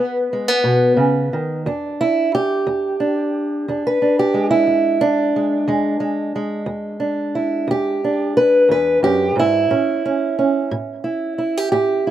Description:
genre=acoustic country blues, solo or duo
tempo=60 BPM (dotted quarters)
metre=12/8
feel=straight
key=E mixolydian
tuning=A4 = 440 Hz
part: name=fingerpicked old ladder-braced acoustic guitar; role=solo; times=0.0-12.1 s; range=E2 to B4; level=-16 LUFS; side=right 1 dB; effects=none
room=light reverb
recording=recorded outdoors, with no room sound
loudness=-16 LUFS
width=side -11 dB against mid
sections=0.0-1.7 A section; 1.7-12.1 B section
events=steel-string acoustic guitar solo 1.7-12.1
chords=0.0 B; 1.7 E7; 9.7 A7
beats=0.65 | 1.66 2.67 3.68 4.69 | 5.70 6.70 7.71 8.72 | 9.72 10.73 11.73

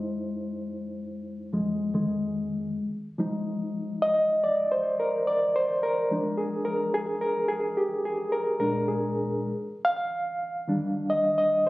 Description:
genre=R&B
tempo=72 BPM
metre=4/4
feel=swing 63% on 16ths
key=F dorian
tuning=A4 = 442 Hz
part: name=reed electric piano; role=solo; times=0.0-11.7 s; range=F2 to F5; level=-25 LUFS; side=equal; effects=overdrive, fast tremolo, slapback echo
room=light reverb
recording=recorded on a phone in the room, club reverb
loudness=-25 LUFS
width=side -18 dB against mid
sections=0.0-2.8 A section; 2.8-11.7 B section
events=reed electric piano solo 0.0-2.8, 2.8-11.7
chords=0.0 Fm7; 6.1 Fm69; 8.6 Bb7; 9.4 Ebmaj9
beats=0.27 1.11 1.94 | 2.77 3.61 4.44 5.27 | 6.11 6.94 7.77 8.61 | 9.44 10.27 11.11

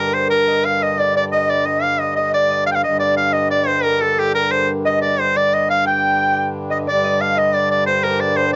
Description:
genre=medieval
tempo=119 BPM (dotted quarters)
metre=6/8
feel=straight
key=G minor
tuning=A4 = 439 Hz
part: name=bright shawm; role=melody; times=0.0-8.6 s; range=G4 to G5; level=-19 LUFS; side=equal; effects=cassette tape
part: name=breathy mellow tenor recorder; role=second line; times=0.0-8.6 s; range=A4 to G5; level=-27 LUFS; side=equal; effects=none
part: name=concert harp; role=second line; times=0.0-8.6 s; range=G4 to G5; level=-29 LUFS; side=equal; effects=none
part: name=hand-pumped harmonium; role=drone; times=0.0-8.6 s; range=G2 to D3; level=-27 LUFS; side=equal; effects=cassette tape
room=light reverb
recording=home recording on cassette, nothing above 7.7 kHz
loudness=-17 LUFS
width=mono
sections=0.0-6.9 A section; 6.9-8.6 B section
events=none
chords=none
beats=0.32 | 0.82 1.33 | 1.83 2.34 | 2.84 3.35 | 3.85 4.35 | 4.86 5.36 | 5.86 6.36 | 6.87 7.37 | 7.87 8.37

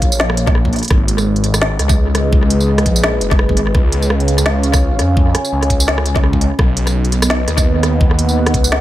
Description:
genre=half-time drum and bass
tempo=169 BPM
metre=4/4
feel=swing 56% on 16ths, half-time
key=unclear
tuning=A4 = 440 Hz
part: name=dark analog pad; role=sustained chords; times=0.0-8.8 s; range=Ab3 to Ab5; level=-20 LUFS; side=right 1 dB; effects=chorus, vintage 12-bit sampler grit, sidechain pumping
part: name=phased detuned saw bass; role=bass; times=0.0-8.8 s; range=Gb1 to F2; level=-16 LUFS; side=equal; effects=phaser
part: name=electronic kick drum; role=drums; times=0.0-8.6 s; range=none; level=-14 LUFS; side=equal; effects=small room ambience
part: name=organic electronic drum kit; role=drums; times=0.0-8.8 s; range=hi-hat, rim click, snare drum, tambourine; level=-19 LUFS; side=equal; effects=small room ambience, tape echo
room=digital ambience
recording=echo-heavy mix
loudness=-12 LUFS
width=side -14 dB against mid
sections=0.0-8.8 A section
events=none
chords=0.0 Bbm; 0.9 Abm; 3.7 Db; 6.6 B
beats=0.20 0.55 | 0.91 1.26 1.62 1.97 | 2.33 2.68 3.04 3.39 | 3.75 4.10 4.46 4.81 | 5.17 5.52 5.88 6.23 | 6.59 6.94 7.30 7.65 | 8.01 8.36 8.72

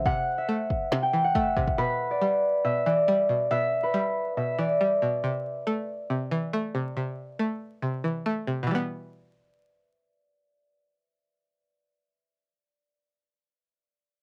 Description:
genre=hip hop, trap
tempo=139 BPM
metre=4/4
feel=half-time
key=E minor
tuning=A4 = 439 Hz
part: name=concert harp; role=melody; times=0.0-6.4 s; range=B4 to G5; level=-28 LUFS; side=equal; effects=cassette tape
part: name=string-like resonator pluck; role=accompaniment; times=0.0-13.5 s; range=B2 to B3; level=-32 LUFS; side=equal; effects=chorus
part: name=minimal click drum kit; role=drums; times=0.1-1.8 s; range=kick drum, snare drum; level=-32 LUFS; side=equal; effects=vintage 12-bit sampler grit, cassette tape
room=moderate booth ambience, RT60 0.2 s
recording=home recording on cassette, vinyl crackle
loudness=-27 LUFS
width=mono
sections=0.0-8.7 A section; 8.7-12.1 B section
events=break 0.0-1.8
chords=0.0 Am; 1.8 Em; 5.2 Am; 8.7 Em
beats=| 0.06 0.49 0.92 1.35 | 1.78 2.21 2.65 3.08 | 3.51 3.94 4.37 4.80 | 5.24 5.67 6.10 6.53 | 6.96 7.39 7.83 8.26 | 8.69 9.12 9.55 9.98 | 10.42 10.85 11.28 11.71

